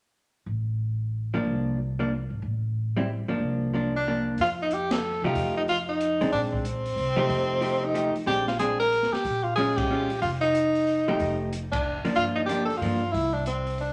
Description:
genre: jazz, small-group swing and bop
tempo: 185 BPM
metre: 3/4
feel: swing 63% on 8ths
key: F mixolydian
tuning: A4 = 440 Hz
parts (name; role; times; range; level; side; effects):
- upright bass; bass; 0.5-13.9 s; F1 to C3; -34 LUFS; equal; none
- hollow-body jazz guitar; accompaniment; 1.3-13.0 s; F3 to G4; -31 LUFS; equal; none
- mellow tenor saxophone; melody; 4.0-13.9 s; C4 to Bb4; -28 LUFS; equal; none
- open jazz drum kit; drums; 4.4-13.9 s; hi-hat, kick drum, ride cymbal, snare drum; -38 LUFS; equal; none
room: wet large studio reverb, RT60 1.1 s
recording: none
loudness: -26 LUFS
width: mono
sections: 0.5-4.4 A section; 4.4-13.9 B section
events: band accent 4.9, 9.7, 11.7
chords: 0.5 Bbmaj7(no3)/A (rootless); 1.5 C9sus4; 2.4 N.C.; 3.4 C9sus4; 4.4 F9; 6.3 Bb9; 7.3 F9; 8.3 Bb9; 9.2 Bbm7; 10.2 F9; 12.2 Gm7; 13.1 Csus2

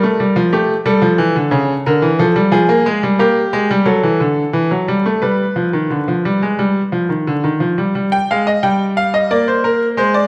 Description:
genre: classical, baroque-style two-part invention for grand piano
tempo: 89 BPM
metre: 4/4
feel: straight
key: unclear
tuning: A4 = 440 Hz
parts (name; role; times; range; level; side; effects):
- bright concert grand piano; solo; 0.0-10.3 s; C#3 to G5; -15 LUFS; equal; none
room: wet recital hall reverb, RT60 1.4 s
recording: vinyl crackle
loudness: -15 LUFS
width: mono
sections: 0.0-8.0 A section; 8.0-10.3 B section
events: none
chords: 0.0 Fadd9; 1.2 A; 2.5 Fmadd9 (rootless); 3.9 D; 5.2 G; 8.0 Fm9/G; 9.3 Bb

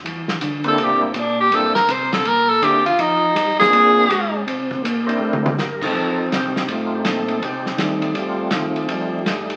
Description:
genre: soul jazz organ trio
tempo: 163 BPM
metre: 4/4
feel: swing 64% on 8ths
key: F mixolydian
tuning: A4 = 440 Hz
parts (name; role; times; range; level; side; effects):
- tonewheel organ; bass; 0.0-9.6 s; G1 to C3; -28 LUFS; equal; chorus vibrato, slow rotary speaker
- warm soul drum kit; drums; 0.1-9.6 s; crash cymbal, hi-hat, kick drum, ride cymbal, snare drum, toms; -27 LUFS; equal; none
- percussive tonewheel organ; melody; 0.6-9.6 s; G3 to Bb4; -25 LUFS; equal; slow rotary speaker, overdrive, chorus vibrato
- bright tenor saxophone; melody; 0.7-4.4 s; Bb3 to C5; -17 LUFS; equal; none
room: wet large studio reverb, RT60 1.0 s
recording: very old 78 rpm record, tube saturation, vinyl crackle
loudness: -19 LUFS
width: mono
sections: 0.0-5.9 A section; 5.9-9.6 B section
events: tenor saxophone solo 0.0-5.9; drum fill 5.2-5.6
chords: 0.1 C9; 3.0 Fsus2; 3.7 Bb9; 4.5 C9; 5.9 F9

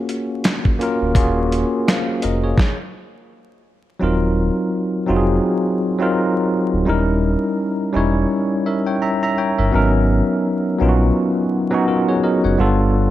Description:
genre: lo-fi hip hop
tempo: 84 BPM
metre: 4/4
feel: swing 57% on 16ths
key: Eb dorian, Eb minor from 4.0 s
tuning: A4 = 440 Hz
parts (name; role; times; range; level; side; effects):
- bell-like tine electric piano; accompaniment; 0.0-13.1 s; Gb3 to Bb5; -17 LUFS; equal; medium stereo tremolo, cassette tape
- dusty soul sampler-style drum kit; drums; 0.1-2.8 s; hi-hat, kick drum, snare drum; -18 LUFS; equal; none
- sub bass with octave; bass; 1.0-13.1 s; D1 to Bb1; -19 LUFS; equal; none
room: light reverb, digital ambience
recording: vinyl crackle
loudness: -16 LUFS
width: side -13 dB against mid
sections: 0.0-4.0 A section; 4.0-13.1 B section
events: stop 2.6-4.0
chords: 0.0 Ebm11; 4.0 Ebm69; 6.9 Eb7b9; 9.7 Abm11; 12.6 G9

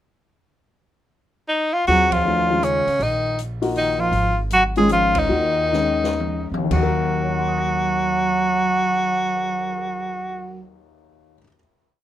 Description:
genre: modal jazz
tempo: 112-159 BPM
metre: 3/4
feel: swing 65% on 8ths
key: Eb dorian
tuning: A4 = 440 Hz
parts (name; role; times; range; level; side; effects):
- clear tenor saxophone; melody; 1.5-10.7 s; Db4 to Ab4; -20 LUFS; equal; none
- warm bass clarinet; second line; 1.9-10.7 s; Db3 to Ab3; -26 LUFS; right 5 dB; none
- warm grand piano; accompaniment; 1.9-11.6 s; Eb2 to Db7; -24 LUFS; left 5 dB; none
- upright bass; bass; 1.9-11.4 s; Ab1 to Eb2; -27 LUFS; right 1 dB; none
- open jazz drum kit; drums; 1.9-9.8 s; crash cymbal, cymbal swell, hi-hat, kick drum, ride cymbal, snare drum, toms; -32 LUFS; right 1 dB; none
room: moderate small room reverb, RT60 0.5 s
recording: minimal, uncompressed stereo recording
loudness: -18 LUFS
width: side -12 dB against mid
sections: 0.7-1.9 pickup bar; 1.9-6.7 A section; 6.7-9.9 final chord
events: band accent 2.1, 5.1; slowing down 4.1-6.7; drum fill 5.7-6.7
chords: 0.7 N.C.; 1.9 Eb9sus4; 6.7 Ebm

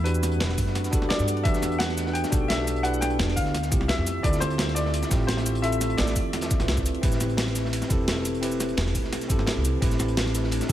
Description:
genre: liquid drum and bass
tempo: 172 BPM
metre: 4/4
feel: straight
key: A minor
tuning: A4 = 443 Hz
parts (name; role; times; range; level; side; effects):
- bright baby grand piano; melody; 0.0-6.8 s; B4 to G5; -31 LUFS; left 2 dB; dub echo
- bell-like tine electric piano; accompaniment; 0.0-10.7 s; C4 to B4; -29 LUFS; right 1 dB; ping-pong delay
- glassy FM pad; sustained chords; 0.0-10.7 s; D3 to F#5; -35 LUFS; left 1 dB; ensemble chorus, built-in reverb
- upright bass; bass; 0.0-10.7 s; E1 to G2; -27 LUFS; equal; none
- breakbeat sampler-style drum kit; drums; 0.1-10.7 s; hi-hat, ride cymbal, shaker, snare drum; -30 LUFS; equal; overdrive
- crunchy breakbeat drum kit; drums; 0.1-10.7 s; hi-hat, snare drum; -37 LUFS; equal; high-pass filter on hats, high-pass filter on snare, high-pass filter on room
- electronic kick drum; drums; 0.6-10.7 s; none; -26 LUFS; equal; overdrive
room: light reverb, small room ambience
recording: none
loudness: -22 LUFS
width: side -12 dB against mid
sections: 0.0-10.7 A section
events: none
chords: 0.0 Em9; 3.5 Dm9; 7.0 Am9

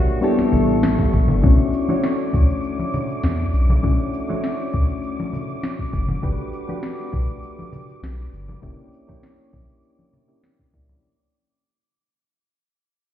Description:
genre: sunset chillout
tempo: 100 BPM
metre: 4/4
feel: straight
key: B minor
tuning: A4 = 437 Hz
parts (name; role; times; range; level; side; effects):
- nylon-string guitar; melody; 0.0-1.1 s; F#4 to G4; -28 LUFS; right 4 dB; tape echo
- soft electric-piano-like synth keys; accompaniment; 0.0-11.1 s; G3 to D5; -23 LUFS; left 2 dB; chorus, auto-pan, low-pass filter, digital delay
- warm sub bass; bass; 0.0-11.0 s; F#1 to E2; -19 LUFS; equal; tube saturation
- wind-like tuned noise texture; texture; 0.0-11.0 s; C#6 to D6; -36 LUFS; equal; built-in reverb
- electronic shaker and snare drum; drums; 0.1-11.0 s; none; -28 LUFS; left 1 dB; overdrive
- congas; percussion; 0.4-11.0 s; none; -29 LUFS; left 1 dB; none
- electronic kick drum; drums; 1.0-10.9 s; none; -22 LUFS; equal; overdrive
room: moderate lush hall reverb, RT60 2.4 s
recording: heard muffled through a wall, stone room reverb, EQ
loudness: -18 LUFS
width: side -11 dB against mid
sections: 0.0-1.4 A section; 1.4-11.0 B section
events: fade-out 1.4-11.0; filter sweep on synth keys 1.4-11.0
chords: 0.2 A7sus4; 1.4 Bm11 (rootless); 6.2 Gmaj9; 8.6 F#7b9b13 (rootless)

